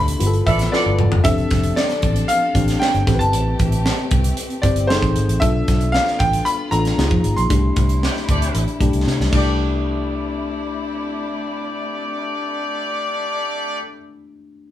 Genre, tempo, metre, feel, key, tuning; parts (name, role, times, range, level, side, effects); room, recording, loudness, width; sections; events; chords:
polished 1980s jazz-funk pop; 115 BPM; 4/4; straight; C major; A4 = 440 Hz
bright grand piano; melody; 0.0-9.0 s; C5 to C6; -22 LUFS; equal
mellow tine electric piano; accompaniment; 0.0-14.7 s; A3 to C5; -24 LUFS; left 3 dB
warm symphonic string section; sustained chords; 0.0-13.8 s; C3 to A4; -33 LUFS; left 2 dB
vintage muted fingered electric bass; bass; 0.0-13.8 s; F1 to C3; -20 LUFS; equal
tight funk drum kit; drums; 0.1-9.4 s; crash cymbal, hi-hat, kick drum, snare drum, toms; -21 LUFS; right 1 dB
warm horn section; second line; 0.5-0.9, 8.0-13.8 s; A3 to D5; -25 LUFS; left 1 dB
moderate studio reverb, RT60 0.8 s; band playing live in one room; -17 LUFS; side -12 dB against mid
0.0-1.2 A section; 1.2-9.6 B section; 9.6-13.8 C section
band accent 0.0-1.2, 7.5-9.6; drum fill 0.7-1.2, 9.1-9.6
0.2 G13; 1.2 F6; 3.1 Am7; 4.9 F#dim7; 5.4 G7/B; 7.0 Db69; 7.5 C69